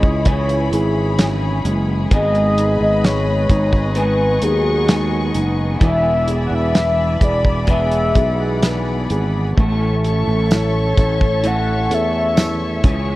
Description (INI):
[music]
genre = pop ballad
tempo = 64 BPM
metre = 4/4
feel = straight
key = unclear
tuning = A4 = 438 Hz
[part]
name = mellow horn-like synth lead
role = melody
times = 0.0-12.8 s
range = G#4 to F#5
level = -20 LUFS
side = left 2 dB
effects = chorus
[part]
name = felt-muted upright piano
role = accompaniment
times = 0.0-13.2 s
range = C#3 to B4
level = -25 LUFS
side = right 1 dB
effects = none
[part]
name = warm chamber string section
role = sustained chords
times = 0.0-13.2 s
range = E4 to C#6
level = -27 LUFS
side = left 2 dB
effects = none
[part]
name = electric guitar through a small old amp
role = arpeggios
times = 0.0-13.2 s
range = G#2 to A4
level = -26 LUFS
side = left 1 dB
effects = ensemble chorus, tape echo
[part]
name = sustaining fretless electric bass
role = bass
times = 0.0-13.2 s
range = E1 to E2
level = -19 LUFS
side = equal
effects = none
[part]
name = damped 70s drum kit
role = drums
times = 0.0-13.1 s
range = hi-hat, kick drum, snare drum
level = -16 LUFS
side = equal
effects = none
[part]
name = warm French horn section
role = second line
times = 0.3-13.2 s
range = E3 to A4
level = -27 LUFS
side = right 3 dB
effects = none
[part]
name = tambourine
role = percussion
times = 10.5-12.6 s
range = none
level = -33 LUFS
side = right 5 dB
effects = none
[sound]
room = light reverb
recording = worn, warbling old tape, cassette tape, warbly pitch drift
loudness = -14 LUFS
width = side -17 dB against mid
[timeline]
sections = 0.0-13.2 A section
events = none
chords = 0.0 C#m; 2.1 G#m; 5.8 E7; 9.6 A